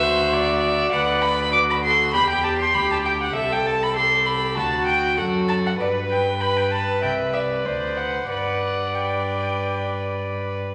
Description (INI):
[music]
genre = quick classical-period movement for string quartet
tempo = 98 BPM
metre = 4/4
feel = uneven beats, rubato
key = G major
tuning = A4 = 440 Hz
[part]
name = rich violin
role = melody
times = 0.0-10.2 s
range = D5 to D6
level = -24 LUFS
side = equal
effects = none
[part]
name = dark violin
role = second line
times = 0.0-10.7 s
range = F#4 to E5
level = -29 LUFS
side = equal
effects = none
[part]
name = warm viola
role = accompaniment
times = 0.0-10.5 s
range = F#4 to D5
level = -28 LUFS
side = equal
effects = none
[part]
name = rich cello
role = bass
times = 0.0-10.6 s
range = C2 to G2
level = -31 LUFS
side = equal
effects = none
[sound]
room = wet recital hall reverb, RT60 1.6 s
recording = none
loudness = -21 LUFS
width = mono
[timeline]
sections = 0.0-10.7 A section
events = none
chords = 0.0 D; 0.9 Bm/D; 2.1 Em; 3.4 Am/C; 4.6 D; 5.8 G; 7.0 C; 7.7 D7; 8.3 G